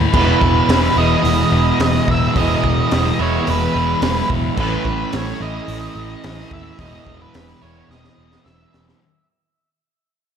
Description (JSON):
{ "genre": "rock, shoegaze and dream pop", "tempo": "108 BPM", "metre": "4/4", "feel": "straight", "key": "E major", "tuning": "A4 = 439 Hz", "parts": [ { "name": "thick fuzz guitar", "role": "riff", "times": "0.0-9.0 s", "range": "E2 to A3", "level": "-22 LUFS", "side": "left 8 dB", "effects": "distortion, wide subtle chorus" }, { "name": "vintage muted picked electric bass", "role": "bass", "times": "0.0-8.9 s", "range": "E1 to D#2", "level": "-21 LUFS", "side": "equal", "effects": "none" }, { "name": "octave-fuzz lead guitar", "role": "melody", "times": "0.1-8.8 s", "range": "B4 to E5", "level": "-22 LUFS", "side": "equal", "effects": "distortion, analog delay" }, { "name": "crunchy overdriven guitar", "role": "riff", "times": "0.1-9.0 s", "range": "E2 to E4", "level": "-21 LUFS", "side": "right 10 dB", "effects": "reverse reverb" }, { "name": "raw garage drum kit", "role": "drums", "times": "0.1-9.0 s", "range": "crash cymbal, hi-hat, kick drum, snare drum", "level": "-22 LUFS", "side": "equal", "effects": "none" } ], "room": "light reverb, small room ambience", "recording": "none", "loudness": "-14 LUFS", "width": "side -8 dB against mid", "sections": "0.0-9.0 A section", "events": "fade-out 0.0-9.0; drum fill 7.9-9.0", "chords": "0.1 Emaj7; 4.6 Aadd9; 6.8 Emaj7", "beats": "| 0.15 0.70 1.26 1.81 | 2.37 2.92 3.48 4.03 | 4.58 5.14 5.69 6.25 | 6.80 7.35 7.91 8.46" }